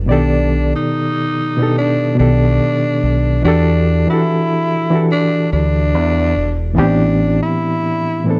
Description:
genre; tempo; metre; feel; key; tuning
lo-fi hip hop; 72 BPM; 4/4; swing 57% on 16ths; unclear; A4 = 440 Hz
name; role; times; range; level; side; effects
barky reed electric piano; accompaniment; 0.0-8.4 s; A2 to D5; -18 LUFS; equal; overdrive, fast tremolo, cassette tape
deep dub fingered electric bass; bass; 0.0-7.4 s; E1 to E2; -19 LUFS; equal; none
growling tenor saxophone; melody; 0.1-8.4 s; D4 to E4; -21 LUFS; equal; none
room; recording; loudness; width
light reverb; cassette tape; -15 LUFS; mono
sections
0.0-8.4 A section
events
none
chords
0.1 B7alt; 3.4 Em11; 6.8 Am11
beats
| 0.10 0.94 1.77 2.60 | 3.44 4.27 5.10 5.94 | 6.77 7.60

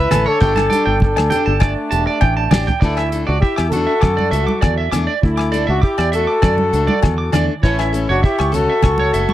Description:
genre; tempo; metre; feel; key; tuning
highlife guitar band; 100 BPM; 4/4; straight; D major; A4 = 441 Hz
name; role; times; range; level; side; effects
warm horn section; melody; 0.0-9.3 s; A3 to B4; -18 LUFS; left 1 dB; none
electric guitar at the edge of break-up; arpeggios; 0.0-9.3 s; C#5 to D6; -22 LUFS; right 7 dB; spring reverb, slapback echo
fingered electric bass; bass; 0.0-9.3 s; E1 to F#2; -19 LUFS; equal; none
picked steel-string acoustic guitar; accompaniment; 0.1-9.3 s; E3 to A4; -25 LUFS; left 6 dB; none
damped 70s drum kit; drums; 0.1-9.3 s; hi-hat, kick drum, rim click, snare drum, toms; -16 LUFS; equal; none
agogo bells; percussion; 0.1-9.0 s; none; -28 LUFS; left 17 dB; none
congas; percussion; 0.1-9.3 s; none; -23 LUFS; right 4 dB; none
room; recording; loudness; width
little or no reverb; dry, close 1970s-style studio recording; -14 LUFS; side -13 dB against mid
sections
0.0-2.8 A section; 2.8-9.3 B section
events
drum fill 2.2-2.8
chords
0.4 Gsus2; 2.8 Dsus2; 7.6 A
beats
| 0.41 1.01 1.61 2.21 | 2.82 3.42 4.02 4.62 | 5.22 5.83 6.43 7.03 | 7.63 8.24 8.84

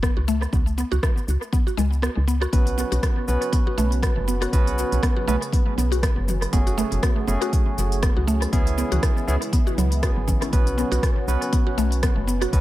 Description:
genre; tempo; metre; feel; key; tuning
afro house; 120 BPM; 4/4; swing 56% on 16ths; unclear; A4 = 438 Hz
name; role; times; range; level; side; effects
mallet-like synth pluck; arpeggios; 0.0-12.5 s; F#3 to F#4; -28 LUFS; left 1 dB; chorus, vintage 12-bit sampler grit, sidechain pumping, dub echo
woody FM bass; bass; 0.0-12.6 s; F#1 to C#2; -23 LUFS; equal; sidechain pumping
deep house drum kit; drums; 0.0-12.6 s; hi-hat, rim click, shaker, toms; -31 LUFS; equal; small room reverb, dub echo
electronic kick drum; drums; 0.0-12.6 s; none; -21 LUFS; equal; small room reverb
warm analog pad; sustained chords; 2.5-12.6 s; B2 to B4; -33 LUFS; left 1 dB; chorus, sidechain pumping
barky tine electric piano; stabs; 2.5-12.6 s; A3 to B4; -28 LUFS; right 2 dB; medium stereo tremolo, sidechain pumping, dub echo
room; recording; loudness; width
light reverb; echo-heavy mix; -19 LUFS; side -15 dB against mid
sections
0.0-12.6 A section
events
kick drops out 2.0-2.5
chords
0.0 F#m; 0.5 C#5; 2.5 F#madd9; 8.5 C#m7; 10.5 Bsus2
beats
0.03 | 0.53 1.03 1.53 2.03 | 2.53 3.03 3.53 4.03 | 4.53 5.03 5.53 6.03 | 6.53 7.03 7.53 8.03 | 8.53 9.03 9.53 10.03 | 10.53 11.03 11.53 12.03 | 12.53

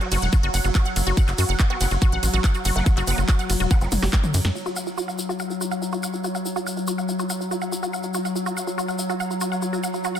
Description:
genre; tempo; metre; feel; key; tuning
psychedelic trance; 142 BPM; 4/4; straight; unclear; A4 = 440 Hz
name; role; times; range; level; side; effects
vowel-sweep wobble bass; second line; 0.0-3.9 s; F#3 to B3; -38 LUFS; right 3 dB; none
evolving wavetable pad; sustained chords; 0.0-10.2 s; F#3; -28 LUFS; left 2 dB; chorus, built-in reverb, vintage 12-bit sampler grit, sidechain pumping
wide unison pluck; riff; 0.0-10.2 s; E4 to G5; -27 LUFS; right 1 dB; auto-pan, sidechain pumping, dub echo
techno drum kit; drums; 0.0-4.5 s; handclaps, hi-hat, ride cymbal, snare drum, toms; -28 LUFS; equal; soft clipping on snare
tight sequencer bass; bass; 0.1-4.5 s; E1 to F#2; -22 LUFS; equal; none
tube shaker; percussion; 0.1-10.2 s; none; -34 LUFS; left 3 dB; none
electronic kick drum; drums; 0.3-4.2 s; none; -19 LUFS; equal; none
room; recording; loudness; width
light reverb; dense, heavily limited modern master; -20 LUFS; side -10 dB against mid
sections
0.0-4.6 A section; 4.6-10.2 B section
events
drop 0.0-4.6; drum fill 3.9-4.6; filter sweep on synth arpeggio sound 4.6-10.2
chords
0.0 F#5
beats
0.33 0.75 | 1.17 1.59 2.02 2.44 | 2.86 3.29 3.71 4.13 | 4.55 4.98 5.40 5.82 | 6.24 6.67 7.09 7.51 | 7.93 8.36 8.78 9.20 | 9.62 10.05

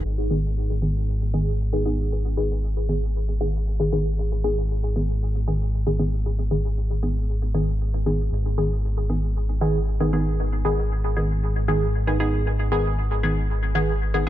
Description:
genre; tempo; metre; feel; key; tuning
techno; 116 BPM; 4/4; straight; G# minor; A4 = 440 Hz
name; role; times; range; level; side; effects
filtered dub chord stab; stabs; 0.0-14.3 s; D#3 to G#4; -25 LUFS; equal; chorus, phaser, dub echo
round analog bass; bass; 0.0-14.3 s; G#1; -23 LUFS; equal; none
room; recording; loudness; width
digital ambience; dark, warm production, low-pass filter; -21 LUFS; side -13 dB against mid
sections
0.0-14.3 A section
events
filter sweep 0.0-14.3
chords
0.0 G#m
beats
| 0.04 0.56 1.08 1.60 | 2.11 2.63 3.15 3.67 | 4.18 4.70 5.22 5.73 | 6.25 6.77 7.29 7.80 | 8.32 8.84 9.36 9.87 | 10.39 10.91 11.42 11.94 | 12.46 12.97 13.49 14.01

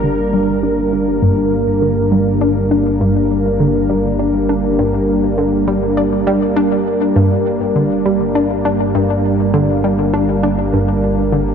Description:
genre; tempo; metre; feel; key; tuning
ambient, sequencer-driven space music; 101 BPM; 4/4; straight; G minor; A4 = 440 Hz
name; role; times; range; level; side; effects
sweeping resonant pad; sustained chords; 0.0-11.5 s; G3 to Bb4; -15 LUFS; equal; chorus
analog pluck; riff; 0.0-11.5 s; G2 to D4; -18 LUFS; left 1 dB; chorus, ping-pong delay
fat analog bass; bass; 0.0-11.5 s; G1; -22 LUFS; equal; none
room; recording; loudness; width
wet cathedral reverb, RT60 5.1 s; in a vast, echoing space; -13 LUFS; side -7 dB against mid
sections
0.0-11.5 A section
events
filter sweep on synth arpeggio sound 0.0-11.5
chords
0.0 Gm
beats
| 0.04 0.63 1.22 1.82 | 2.41 3.00 3.60 4.19 | 4.79 5.38 5.98 6.57 | 7.16 7.76 8.35 8.95 | 9.54 10.13 10.73 11.32

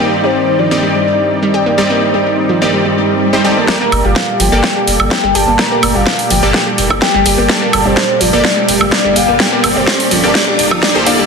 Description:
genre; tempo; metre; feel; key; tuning
progressive house; 126 BPM; 4/4; straight; G minor; A4 = 445 Hz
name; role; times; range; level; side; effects
soft octave-layered synth lead; melody; 0.0-11.2 s; C5 to Bb5; -17 LUFS; left 2 dB; chorus, phaser, dub echo
lush unison pad; sustained chords; 0.0-11.3 s; G2 to D5; -19 LUFS; right 1 dB; chorus, sidechain pumping
analog pluck; arpeggios; 0.0-11.3 s; F3 to G4; -18 LUFS; right 1 dB; chorus, sidechain pumping, ping-pong delay
supersaw stab; stabs; 0.0-11.3 s; G3 to D5; -16 LUFS; left 1 dB; cassette tape, sidechain pumping, ping-pong delay
swell and riser; sound effects; 2.9-11.3 s; none; -20 LUFS; right 1 dB; none
big-room dance drum kit; drums; 3.7-11.2 s; hi-hat, snare drum, woodblock; -14 LUFS; right 1 dB; overdrive, high-pass filter on snare, high-pass filter on hats, high-pass filter on perc
electronic kick drum; drums; 3.7-10.9 s; none; -19 LUFS; equal; overdrive, high-pass filter on kick
round analog bass; bass; 3.9-11.3 s; F1 to G1; -20 LUFS; equal; sidechain pumping
room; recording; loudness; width
wet lush hall reverb, RT60 1.9 s; dense, heavily limited modern master, high-pass filter; -10 LUFS; side -5 dB against mid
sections
0.0-3.7 A section; 3.7-11.3 B section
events
filter sweep on analog synth pad 0.0-3.7; swell 2.9-3.7; build-up 3.7-11.3; drum fill 3.7-11.3; riser 3.7-11.3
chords
0.0 Cmadd9/G; 3.7 Gmadd9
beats
0.35 0.83 1.30 | 1.78 2.26 2.73 3.21 | 3.69 4.16 4.64 5.11 | 5.59 6.07 6.54 7.02 | 7.49 7.97 8.45 8.92 | 9.40 9.88 10.35 10.83

